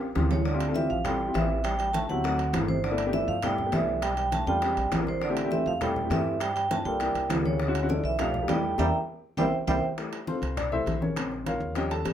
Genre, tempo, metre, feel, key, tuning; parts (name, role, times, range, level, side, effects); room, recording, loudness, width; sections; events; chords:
Afro-Cuban jazz; 202 BPM; 4/4; straight; D minor; A4 = 441 Hz
dark baby grand piano; accompaniment; 0.0-12.1 s; Db3 to A5; -31 LUFS; left 3 dB
upright bass; bass; 0.0-12.1 s; G1 to G2; -32 LUFS; equal
bongos; percussion; 0.0-12.1 s; -36 LUFS; left 4 dB
congas; percussion; 0.0-12.1 s; -33 LUFS; equal
timbales; percussion; 0.2-12.1 s; -36 LUFS; right 4 dB
vibraphone with medium hard mallets; melody; 0.3-9.8 s; C5 to Bb5; -29 LUFS; right 2 dB
warm trombone; second line; 0.3-9.8 s; C3 to A3; -34 LUFS; right 4 dB
moderate studio reverb, RT60 0.5 s; band playing live in one room; -25 LUFS; side -10 dB against mid
0.5-10.0 A section; 10.0-12.1 B section
drum fill 0.0-0.5, 8.8-10.0; band accent 8.8-10.0; grand piano solo 10.0-12.1
0.5 Dm11; 1.6 Am9; 2.2 D7b9; 2.8 G69; 4.0 Bm7b5; 4.6 E7alt; 5.2 Am7; 6.4 Gm7; 7.0 C9; 7.6 Dmaj9#11; 8.2 B7alt; 8.8 E7(b5, no3); 9.4 C7; 10.0 Fmaj7; 11.2 Bbm7